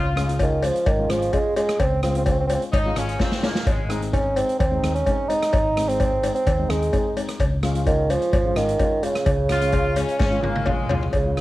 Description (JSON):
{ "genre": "calypso", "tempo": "129 BPM", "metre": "4/4", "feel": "straight", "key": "Db major", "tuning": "A4 = 440 Hz", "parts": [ { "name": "clear horn section", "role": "second line", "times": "0.0-4.0, 9.5-11.1 s", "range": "Ab3 to F4", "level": "-28 LUFS", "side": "left 1 dB", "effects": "plate reverb, tape echo" }, { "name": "hollow-body short-scale fingered electric bass", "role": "bass", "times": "0.0-11.4 s", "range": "Ab1 to Eb2", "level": "-25 LUFS", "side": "equal", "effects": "none" }, { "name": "steel pan", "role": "accompaniment", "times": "0.2-11.4 s", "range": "Ab3 to F4", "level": "-29 LUFS", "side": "left 3 dB", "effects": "plate reverb" }, { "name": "street-band drum kit", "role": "drums", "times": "0.2-11.4 s", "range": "hi-hat, kick drum, rim click, snare drum, toms", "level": "-25 LUFS", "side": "equal", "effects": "none" }, { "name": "mellow bassoon", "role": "melody", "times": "0.4-11.4 s", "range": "Db3 to Eb4", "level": "-22 LUFS", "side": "right 2 dB", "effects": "cassette tape, plate reverb" }, { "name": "cowbell", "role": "percussion", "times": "0.4-11.2 s", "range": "none", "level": "-29 LUFS", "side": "left 4 dB", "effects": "none" } ], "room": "light reverb", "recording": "home recording on cassette", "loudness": "-19 LUFS", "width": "side -16 dB against mid", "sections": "0.0-11.1 A section", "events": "drum fill 3.2-3.7, 10.2-11.1", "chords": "0.0 Db; 3.7 Ab; 7.4 Db" }